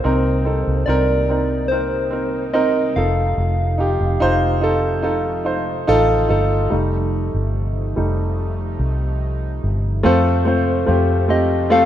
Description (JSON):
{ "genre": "pop ballad", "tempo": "72 BPM", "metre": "4/4", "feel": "straight", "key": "unclear", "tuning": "A4 = 440 Hz", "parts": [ { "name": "soft struck synth lead", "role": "melody", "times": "0.0-11.9 s", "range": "C5 to F5", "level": "-22 LUFS", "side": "equal", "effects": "chorus" }, { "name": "clear concert grand piano", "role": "accompaniment", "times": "0.0-11.9 s", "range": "C3 to C5", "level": "-19 LUFS", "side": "equal", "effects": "none" }, { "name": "sweeping resonant pad", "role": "sustained chords", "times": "0.0-11.9 s", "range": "C3 to F4", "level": "-30 LUFS", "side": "right 2 dB", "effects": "chorus" }, { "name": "vintage muted fingered electric bass", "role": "bass", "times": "0.0-11.9 s", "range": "F1 to F2", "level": "-20 LUFS", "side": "equal", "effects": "none" } ], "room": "moderate plate reverb, RT60 2.9 s", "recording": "rough home demo mix", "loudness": "-16 LUFS", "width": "side -11 dB against mid", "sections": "0.0-6.7 A section; 6.7-10.0 B section; 10.0-11.9 C section", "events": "grand piano solo 6.7-10.0", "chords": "0.0 Cm7; 3.0 F7; 10.0 F", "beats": "| 0.05 0.88 1.72 2.55 | 3.38 4.22 5.05 5.88 | 6.72 7.55 8.38 9.22 | 10.05 10.88 11.72" }